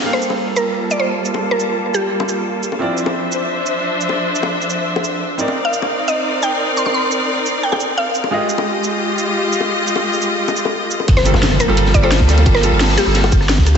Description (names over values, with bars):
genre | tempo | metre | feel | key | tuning
liquid drum and bass | 174 BPM | 4/4 | straight | unclear | A4 = 440 Hz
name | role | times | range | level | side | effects
clear baby grand piano | accompaniment | 0.0-13.8 s | G3 to F5 | -23 LUFS | right 2 dB | tape echo
clear studio string section | sustained chords | 0.0-13.8 s | F3 to E5 | -19 LUFS | equal | sidechain pumping, low-pass filter
mallet-like synth pluck | melody | 0.1-2.3, 5.6-8.3, 11.2-13.3 s | G4 to C6 | -20 LUFS | equal | chorus, analog delay
drum and bass drum kit | drums | 0.2-13.8 s | hi-hat, rim click, shaker, snare drum | -24 LUFS | right 1 dB | small room ambience
bongos | percussion | 0.3-13.8 s | none | -26 LUFS | left 5 dB | none
saturated sub bass | bass | 11.1-13.8 s | G1 to D2 | -15 LUFS | equal | none
crunchy breakbeat drum kit | drums | 11.1-13.7 s | hi-hat, ride cymbal, snare drum | -26 LUFS | equal | high-pass filter on cymbals, small room ambience, high-pass filter on hats, high-pass filter on snare, high-pass filter on room
electronic kick drum | drums | 11.1-13.7 s | none | -14 LUFS | equal | small room ambience
impact | sound effects | 11.1-12.5 s | none | -23 LUFS | equal | none
room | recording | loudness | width
moderate lush hall reverb, RT60 2.1 s | dreamy mix soaked in reverb, nothing above 8.0 kHz | -14 LUFS | side -7 dB against mid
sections
0.0-11.1 A section; 11.1-13.8 B section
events
filter sweep on string section 0.0-11.1; drop 11.1-13.8; impact 11.1-12.5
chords
0.0 Gm9; 2.8 Dm9; 5.4 Cm9; 8.3 Fm9; 11.1 Gm9